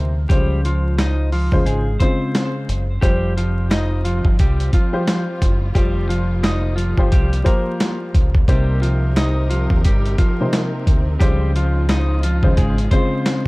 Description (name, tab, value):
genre	hip hop, boom-bap hip-hop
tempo	88 BPM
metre	4/4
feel	swing 59% on 16ths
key	F minor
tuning	A4 = 441 Hz
part	dark upright piano	accompaniment	0.0-13.5 s	C3 to C5	-24 LUFS	left 1 dB	cassette tape, high-pass filter, low-pass filter
part	deep dub fingered electric bass	bass	0.0-12.9 s	F1 to Eb2	-19 LUFS	equal	none
part	clean electric guitar	melody	0.3-13.4 s	F3 to Eb5	-25 LUFS	equal	high-pass filter, low-pass filter, digital delay
part	dusty soul sampler-style drum kit	drums	0.3-13.5 s	hi-hat, kick drum, snare drum	-17 LUFS	equal	none
part	warm studio string section	sustained chords	3.0-13.5 s	C3 to Bb4	-33 LUFS	equal	high-pass filter, low-pass filter
part	finger snaps	percussion	3.7-13.4 s	none	-38 LUFS	right 2 dB	none
room	small room ambience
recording	dark, warm production, vinyl crackle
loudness	-15 LUFS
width	side -23 dB against mid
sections	0.0-3.0 A section; 3.0-13.5 B section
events	none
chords	0.3 Dbmaj7; 3.0 Fsus2; 8.5 Cm7; 11.2 Dbmaj7